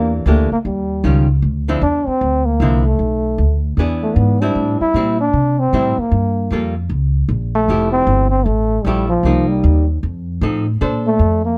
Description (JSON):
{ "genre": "jazz, small-group swing and bop", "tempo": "154 BPM", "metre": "4/4", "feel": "swing 64% on 8ths", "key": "F major", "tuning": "A4 = 436 Hz", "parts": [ { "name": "mellow trombone", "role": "melody", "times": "0.0-11.6 s", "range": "F3 to E4", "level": "-20 LUFS", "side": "equal", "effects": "none" }, { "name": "archtop guitar, miked and amplified", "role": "accompaniment", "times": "0.0-11.4 s", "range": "D3 to C5", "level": "-23 LUFS", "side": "equal", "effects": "none" }, { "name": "upright bass", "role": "bass", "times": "0.0-11.6 s", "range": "F1 to C3", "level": "-19 LUFS", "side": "equal", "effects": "none" } ], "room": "little or no reverb", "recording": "none", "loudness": "-16 LUFS", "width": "mono", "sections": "0.0-10.8 A section", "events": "none", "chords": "0.0 Em7b5; 0.6 Eb9; 1.4 Dm9; 3.0 Bm7; 3.8 E7; 4.6 Am7; 6.1 Gm9; 6.9 Bbm; 7.7 Fmaj9; 9.2 Cm7; 10.0 F7; 10.8 Bbmaj9" }